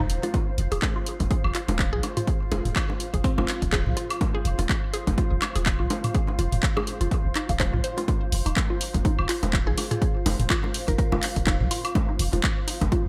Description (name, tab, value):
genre	minimal techno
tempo	124 BPM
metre	4/4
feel	swing 56% on 16ths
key	unclear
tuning	A4 = 440 Hz
part	hollow square pluck	riff	0.0-13.0 s	Eb4 to F5	-35 LUFS	equal	chorus, phaser, sidechain pumping, delay
part	punchy sub bass	bass	0.0-13.1 s	Eb1 to C2	-29 LUFS	equal	sidechain pumping
part	granular cloud pad	texture	0.0-13.1 s	F4 to F5	-38 LUFS	equal	built-in reverb, sidechain pumping
part	house drum kit	drums	0.1-13.0 s	handclaps, hi-hat	-33 LUFS	equal	none
part	electronic bongos, woodblock and toms	percussion	0.2-12.9 s	none	-34 LUFS	equal	delay
part	electronic kick drum	drums	0.3-13.0 s	none	-28 LUFS	equal	none
part	mallet-like synth pluck	melody	1.9-3.4, 9.7-11.1 s	C4 to Bb4	-38 LUFS	equal	chorus, delay
room	light reverb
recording	none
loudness	-25 LUFS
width	mono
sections	0.0-13.1 A section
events	none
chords	0.0 F5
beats	| 0.34 0.82 1.31 1.79 | 2.27 2.76 3.24 3.73 | 4.21 4.69 5.18 5.66 | 6.14 6.63 7.11 7.60 | 8.08 8.56 9.05 9.53 | 10.02 10.50 10.98 11.47 | 11.95 12.44 12.92